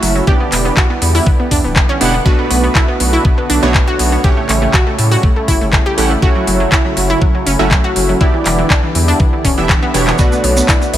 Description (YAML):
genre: progressive house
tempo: 121 BPM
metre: 4/4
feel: straight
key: B minor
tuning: A4 = 440 Hz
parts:
  - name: warm analog pad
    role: sustained chords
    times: 0.0-11.0 s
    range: C#3 to F#4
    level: -22 LUFS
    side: left 1 dB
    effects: chorus, sidechain pumping
  - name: analog pluck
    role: arpeggios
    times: 0.0-11.0 s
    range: E3 to G4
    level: -18 LUFS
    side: equal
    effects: chorus, sidechain pumping, tape echo
  - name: supersaw stab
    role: stabs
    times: 0.0-11.0 s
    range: A2 to F#5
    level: -18 LUFS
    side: right 3 dB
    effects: sidechain pumping, tape echo
  - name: saturated sub bass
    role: bass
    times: 0.0-11.0 s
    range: D1 to A2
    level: -16 LUFS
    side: equal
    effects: sidechain pumping
  - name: pop drum kit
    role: drums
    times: 0.0-11.0 s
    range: handclaps, hi-hat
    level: -18 LUFS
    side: left 1 dB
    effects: none
  - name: electronic kick drum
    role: drums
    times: 0.3-10.8 s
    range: none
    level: -13 LUFS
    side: equal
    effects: none
  - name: soft octave-layered synth lead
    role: melody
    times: 10.2-11.0 s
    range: C#5 to E5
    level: -19 LUFS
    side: left 2 dB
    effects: chorus, tremolo, tape echo
  - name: soft synth bell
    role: second line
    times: 10.2-11.0 s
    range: C#5 to E5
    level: -26 LUFS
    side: equal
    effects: none
  - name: egg shaker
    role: percussion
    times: 10.2-10.9 s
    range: none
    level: -23 LUFS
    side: right 3 dB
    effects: none
room: light reverb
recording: none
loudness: -10 LUFS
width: side -12 dB against mid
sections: 0.0-11.0 A section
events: drum fill 9.7-10.2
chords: 0.3 Em7; 2.3 Bm7; 4.2 A7; 6.2 F#m7; 8.2 Em7; 10.2 Bm7